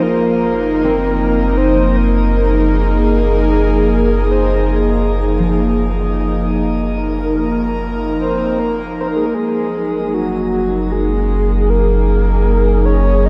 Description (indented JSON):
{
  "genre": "ambient",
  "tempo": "77 BPM",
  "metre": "3/4",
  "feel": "straight",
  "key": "Gb lydian",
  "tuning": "A4 = 440 Hz",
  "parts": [
    { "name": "breathy flute-like synth lead", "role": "melody", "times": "0.0-13.3 s", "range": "Gb4 to Eb5", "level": "-22 LUFS", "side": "equal", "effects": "analog chorus, cassette tape, shimmer reverb, diffuse ambient delay" },
    { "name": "airy breathy pad", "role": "sustained chords", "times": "0.0-13.3 s", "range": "F3 to Bb4", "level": "-19 LUFS", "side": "equal", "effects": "chorus, shimmer reverb" },
    { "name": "concert harp", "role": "arpeggios", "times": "0.0-9.3 s", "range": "F3 to F4", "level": "-28 LUFS", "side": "equal", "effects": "shimmer reverb, diffuse ambient delay" },
    { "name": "warm sub bass", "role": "bass", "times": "0.0-13.3 s", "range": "Gb1", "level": "-20 LUFS", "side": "equal", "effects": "none" },
    { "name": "analog drone", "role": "drone", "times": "0.0-0.1, 11.2-13.3 s", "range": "F3 to Db4", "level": "-30 LUFS", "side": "equal", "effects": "chorus" }
  ],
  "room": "wet cathedral reverb, RT60 4.9 s",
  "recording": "dark, warm production",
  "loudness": "-15 LUFS",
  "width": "mono",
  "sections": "0.0-9.4 A section; 9.4-13.3 B section",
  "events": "fade-out on harp 0.0-9.4; fade-out on sub bass 0.0-9.4; filter sweep on analog synth pad 9.4-13.3",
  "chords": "0.0 Gbmaj7; 9.4 Gb",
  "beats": "| 0.02 0.80 1.58 | 2.35 3.13 3.91 | 4.69 5.47 6.25 | 7.03 7.81 8.59 | 9.37 10.15 10.93 | 11.71 12.48 13.26"
}